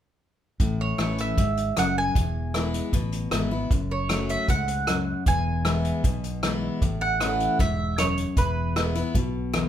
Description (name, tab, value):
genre	honky-tonk and classic country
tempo	154 BPM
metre	4/4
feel	straight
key	A major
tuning	A4 = 440 Hz
part	picked steel-string acoustic guitar	accompaniment	0.6-9.7 s	E2 to F#4	-28 LUFS	left 3 dB	none
part	fingered electric bass	bass	0.6-9.7 s	E1 to C#2	-29 LUFS	equal	none
part	unplugged drum kit	drums	0.6-9.6 s	hi-hat, kick drum, rim click	-26 LUFS	equal	none
part	mandolin	melody	0.8-8.9 s	B4 to G#5	-28 LUFS	right 4 dB	none
room	light reverb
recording	minimal, uncompressed stereo recording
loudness	-22 LUFS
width	side -10 dB against mid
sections	0.6-6.8 A section; 6.8-9.7 B section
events	none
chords	0.6 A; 2.2 E; 3.7 F#m; 5.3 E; 6.8 A; 8.4 E